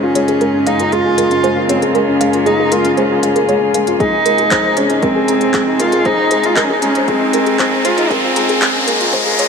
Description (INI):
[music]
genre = piano and strings electronica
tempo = 117 BPM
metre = 4/4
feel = straight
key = Bb minor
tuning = A4 = 444 Hz
[part]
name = dark cello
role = melody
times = 0.0-9.5 s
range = Ab3 to F4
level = -16 LUFS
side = right 1 dB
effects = digital delay
[part]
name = muted string quartet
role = sustained chords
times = 0.0-9.5 s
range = C3 to Ab4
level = -22 LUFS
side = left 2 dB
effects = sidechain pumping
[part]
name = felt-muted upright piano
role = riff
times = 0.0-9.5 s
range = Ab3 to C5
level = -17 LUFS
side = left 3 dB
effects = digital delay
[part]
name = soft round pluck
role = arpeggios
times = 0.2-9.4 s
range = Ab4 to Bb5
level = -21 LUFS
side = right 4 dB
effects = chorus, sidechain pumping, digital delay
[part]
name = organic electronic drum kit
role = drums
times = 0.2-9.5 s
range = handclaps, hi-hat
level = -22 LUFS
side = equal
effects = high-pass filter on hats, studio reverb, high-pass filter on snare
[part]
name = electronic kick drum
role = drums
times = 4.0-9.2 s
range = none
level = -24 LUFS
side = equal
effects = studio reverb
[part]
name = riser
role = sound effects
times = 5.8-9.5 s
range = none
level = -20 LUFS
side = left 1 dB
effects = none
[sound]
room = moderate huge ambient reverb, RT60 4.2 s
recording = high-pass filter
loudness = -11 LUFS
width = side -6 dB against mid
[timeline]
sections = 0.0-9.5 A section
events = build-up 0.0-9.5; filter sweep on synth arpeggio sound 0.0-9.5; filter sweep 0.0-9.5; riser 5.8-9.5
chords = 0.0 Bbm7; 4.0 Ab; 8.1 Bbm7